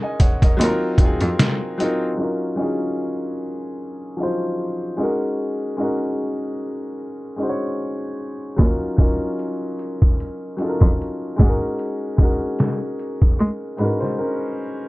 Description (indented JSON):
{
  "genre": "lo-fi hip hop",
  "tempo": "75 BPM",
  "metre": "4/4",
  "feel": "swing 55% on 16ths",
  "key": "Eb dorian",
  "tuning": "A4 = 440 Hz",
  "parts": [
    { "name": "warm upright piano", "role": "accompaniment", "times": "0.0-14.9 s", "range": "F3 to Ab5", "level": "-23 LUFS", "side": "left 1 dB", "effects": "none" },
    { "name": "trip hop sampler-style drum kit", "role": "drums", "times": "0.2-2.0, 8.6-14.2 s", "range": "hi-hat, kick drum, snare drum", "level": "-16 LUFS", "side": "equal", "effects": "none" },
    { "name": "clear cello", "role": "bass", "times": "0.6-1.3, 8.6-13.9 s", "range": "Eb2 to Ab3", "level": "-21 LUFS", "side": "equal", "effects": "none" }
  ],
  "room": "light reverb",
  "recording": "dark, warm production, low-pass filter",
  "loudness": "-19 LUFS",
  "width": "side -20 dB against mid",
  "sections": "0.0-2.2 A section; 2.2-14.9 B section",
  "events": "filter sweep 2.2-14.9; break 14.2-14.9",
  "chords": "0.0 Ab7sus4; 0.6 Ebm69; 2.2 Ebm9; 5.0 Ab7sus4; 8.6 Ebm9; 11.4 Ab7sus4",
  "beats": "0.59 1.39 | 2.19 2.99 3.79 4.59 | 5.39 6.19 6.99 7.79 | 8.59 9.39 10.19 10.99 | 11.79 12.59 13.39 14.19"
}